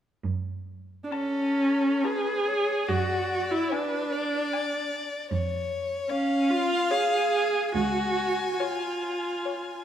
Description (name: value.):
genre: classical, slow romantic movement for string quartet.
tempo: 62-77 BPM.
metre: 3/4.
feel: rubato.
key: F# minor.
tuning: A4 = 441 Hz.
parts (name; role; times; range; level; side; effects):
rich cello; bass; 0.2-8.4 s; C#2 to F#2; -31 LUFS; right 3 dB; none.
rich viola; accompaniment; 1.0-9.8 s; C#4 to G#4; -26 LUFS; right 1 dB; none.
rich violin; melody; 1.1-9.8 s; C#5 to A5; -37 LUFS; left 8 dB; none.
rich violin; second line; 1.1-9.8 s; A4 to G#5; -31 LUFS; left 3 dB; none.
room: wet scoring stage reverb, RT60 1.9 s.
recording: none.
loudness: -24 LUFS.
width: side -10 dB against mid.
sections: 0.2-9.8 A section.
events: none.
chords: 0.2 F#m; 2.9 E9/F# (rootless); 5.3 C#/E#; 7.8 C#.